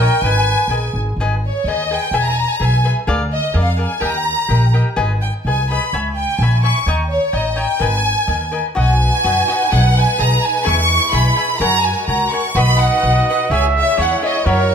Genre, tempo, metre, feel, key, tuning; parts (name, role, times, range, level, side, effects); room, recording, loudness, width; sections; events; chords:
mexican folk, mariachi; 127 BPM; 2/4; rubato; G# harmonic minor, B major from 8.8 s; A4 = 443 Hz
rich studio violin section; melody; 0.0-14.7 s; C#5 to C#6; -17 LUFS; equal
mellow trumpet; second line; 0.0-1.2, 12.6-14.7 s; G#4 to E5; -20 LUFS; right 6 dB
cavaquinho; accompaniment; 0.0-14.6 s; E4 to B5; -22 LUFS; left 3 dB
upright bass; bass; 0.0-14.7 s; E1 to F#2; -17 LUFS; equal
warm studio violin section; sustained chords; 8.8-14.7 s; G#3 to C#5; -26 LUFS; left 1 dB
light reverb; -14 LUFS; side -7 dB against mid
0.0-1.2 A section; 1.2-8.8 A section; 8.8-14.7 B section
0.2 G#madd9; 1.2 G#m; 2.1 E; 3.1 A#7/D; 4.0 D#; 5.0 G#m; 5.9 C#m7; 6.9 D#7; 7.8 G#madd9; 8.8 B; 9.7 G#m/B; 10.7 E; 11.6 F#add9; 12.6 B; 13.5 C#m